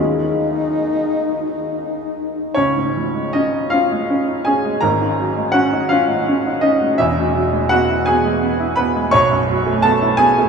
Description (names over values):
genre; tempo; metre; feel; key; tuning
classical, impressionist duo for alto saxophone and grand piano; 45-58 BPM (dotted quarters); 6/8; rubato; unclear; A4 = 439 Hz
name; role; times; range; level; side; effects
mellow alto saxophone; melody; 0.0-2.1 s; Eb4; -23 LUFS; left 3 dB; none
clear baby grand piano; accompaniment; 0.0-10.5 s; E1 to Db6; -15 LUFS; right 1 dB; none
room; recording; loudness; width
wet huge ambient reverb, RT60 7.8 s; in a vast, echoing space, small room reverb; -15 LUFS; side -6 dB against mid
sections
0.0-2.6 A section; 2.6-10.5 B section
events
none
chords
0.0 Ebm11; 2.6 Dbadd9; 4.8 Ab9sus4; 7.0 Eadd9; 9.1 Cb9sus4